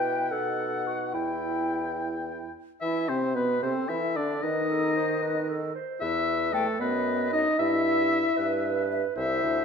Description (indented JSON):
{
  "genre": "quick classical-period movement for wind quintet",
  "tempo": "75 BPM (dotted quarters)",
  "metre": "6/8",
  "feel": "rubato",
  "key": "E minor",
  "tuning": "A4 = 440 Hz",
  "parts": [
    { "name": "mellow hollow silver concert flute", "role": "melody", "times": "0.0-9.6 s", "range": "C4 to G5", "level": "-33 LUFS", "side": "left 8 dB", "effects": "none" },
    { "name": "warm oboe", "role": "second line", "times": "0.0-9.6 s", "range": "A4 to G5", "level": "-30 LUFS", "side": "left 4 dB", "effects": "none" },
    { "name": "dark clarinet", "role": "accompaniment", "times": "0.0-9.6 s", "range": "E4 to E5", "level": "-32 LUFS", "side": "right 6 dB", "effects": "none" },
    { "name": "mellow French horn", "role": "accompaniment", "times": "0.0-9.6 s", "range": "A3 to E4", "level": "-30 LUFS", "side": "left 1 dB", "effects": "none" },
    { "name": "warm bassoon", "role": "bass", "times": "0.0-9.6 s", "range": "C2 to E3", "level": "-32 LUFS", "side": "right 3 dB", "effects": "none" }
  ],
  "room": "moderate recital hall reverb, RT60 1.4 s",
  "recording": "minimal, uncompressed stereo recording, lossy compression artefacts",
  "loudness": "-25 LUFS",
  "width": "side -6 dB against mid",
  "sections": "0.0-2.8 A section; 2.8-9.6 B section",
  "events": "none",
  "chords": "0.3 B7; 1.1 Em; 2.8 E5; 3.6 Am/C; 4.4 B7b9/D#; 6.0 E5; 6.8 B/F#; 7.6 Em/G",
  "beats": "0.32 | 1.14 1.98 | 2.82 3.62 | 4.43 5.22 | 6.01 6.80 | 7.59 8.37 | 9.16"
}